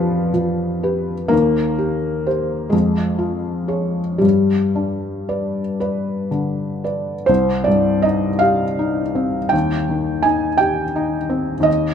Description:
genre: classical, romantic nocturne for solo piano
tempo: 37-57 BPM (dotted quarters)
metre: 6/8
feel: rubato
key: C minor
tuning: A4 = 440 Hz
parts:
  - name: felt-muted upright piano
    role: solo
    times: 0.0-11.9 s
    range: C2 to Ab5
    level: -16 LUFS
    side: left 1 dB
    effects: none
room: moderate recital hall reverb, RT60 1.6 s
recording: close, detailed microphones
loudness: -17 LUFS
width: side -8 dB against mid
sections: 0.0-7.3 A section; 7.3-11.9 B section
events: none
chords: 0.0 G7/F; 1.3 Cm/Eb; 2.7 Db/F; 4.2 G; 7.3 Cm; 9.5 Cm/Eb

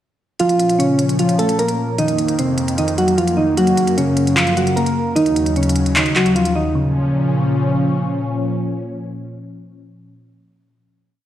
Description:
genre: hip hop, trap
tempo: 151 BPM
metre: 4/4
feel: half-time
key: Bb minor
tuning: A4 = 440 Hz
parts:
  - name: soft electric-piano-like synth keys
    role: melody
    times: 0.4-7.9 s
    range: C3 to Bb4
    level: -16 LUFS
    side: equal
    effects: chorus, low-pass filter
  - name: warm analog pad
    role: sustained chords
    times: 0.4-10.1 s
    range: Eb2 to Db4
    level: -21 LUFS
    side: equal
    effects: chorus
  - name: trap drum kit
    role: drums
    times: 0.4-6.5 s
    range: handclaps, hi-hat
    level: -22 LUFS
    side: equal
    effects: overdrive, vintage 12-bit sampler grit
room: light reverb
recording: played on a big sound system in a bare room, stone room reverb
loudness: -15 LUFS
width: side -12 dB against mid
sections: 0.4-6.8 breakdown; 6.8-9.9 final chord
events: none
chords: 0.4 Bbm; 2.0 F7sus4; 3.6 Gb; 5.2 Ebm7; 6.8 Bbm

